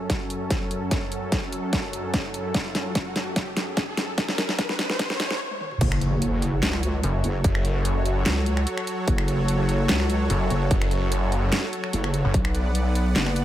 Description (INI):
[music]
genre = heavy wobble dubstep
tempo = 147 BPM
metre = 4/4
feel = half-time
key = F# minor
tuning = A4 = 441 Hz
[part]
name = supersaw pad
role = sustained chords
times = 0.0-13.4 s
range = F#2 to F#5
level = -30 LUFS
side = equal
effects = sidechain pumping, low-pass filter
[part]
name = riser and impact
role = sound effects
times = 1.7-7.4 s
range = none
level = -33 LUFS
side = equal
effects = none
[part]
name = dubstep drum kit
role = drums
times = 0.1-13.4 s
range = crash cymbal, finger snaps, handclaps, hi-hat, snare drum, toms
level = -26 LUFS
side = equal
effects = overdrive
[part]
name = electronic kick drum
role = drums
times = 0.1-12.4 s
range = none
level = -25 LUFS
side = equal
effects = overdrive
[part]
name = wobble bass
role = bass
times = 5.8-13.4 s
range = F#1 to C#2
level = -23 LUFS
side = equal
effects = chorus, overdrive
[part]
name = snarling distorted saw bass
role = bass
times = 7.0-12.3 s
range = F#1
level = -23 LUFS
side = equal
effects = distortion, overdrive
[sound]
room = little or no reverb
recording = high-pass filter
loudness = -22 LUFS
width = side -12 dB against mid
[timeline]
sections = 0.0-5.8 A section; 5.8-13.4 B section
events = build-up 0.0-5.8; drum fill 0.0-5.4, 5.5-5.8; filter sweep on supersaw synth 0.0-5.8; filter sweep 0.0-5.8; riser 1.7-5.4; stop 5.4-5.8; drop 5.8-13.4; impact 5.8-7.4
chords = 0.0 F#m; 12.3 Bm